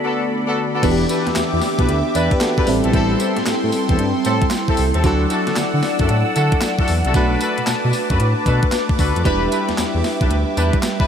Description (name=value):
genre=R&B, new jack swing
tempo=114 BPM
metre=4/4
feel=swing 64% on 16ths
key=E minor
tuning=A4 = 440 Hz
part: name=FM electric piano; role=accompaniment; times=0.0-11.1 s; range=D3 to D5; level=-21 LUFS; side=equal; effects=chorus, phaser
part: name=phased analog pad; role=sustained chords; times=0.0-11.1 s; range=G4 to E6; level=-24 LUFS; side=equal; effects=phaser, chorus
part: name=warm horn section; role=stabs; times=0.0-11.1 s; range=B3 to B4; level=-24 LUFS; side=left 2 dB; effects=analog delay
part: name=smooth synth bass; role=bass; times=0.8-10.7 s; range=E1 to D3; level=-20 LUFS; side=equal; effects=none
part: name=clean 12-bit digital drum machine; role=drums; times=0.8-11.1 s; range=crash cymbal, handclaps, hi-hat, kick drum, snare drum, tambourine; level=-21 LUFS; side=equal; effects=overdrive
room=wet huge ambient reverb, RT60 4.9 s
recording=dreamy mix soaked in reverb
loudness=-15 LUFS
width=side -8 dB against mid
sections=0.8-11.1 A section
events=break 0.0-0.8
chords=0.0 Bm7; 0.8 Em7; 2.7 Am7; 5.0 Dadd9; 7.1 Bm7; 9.3 Em7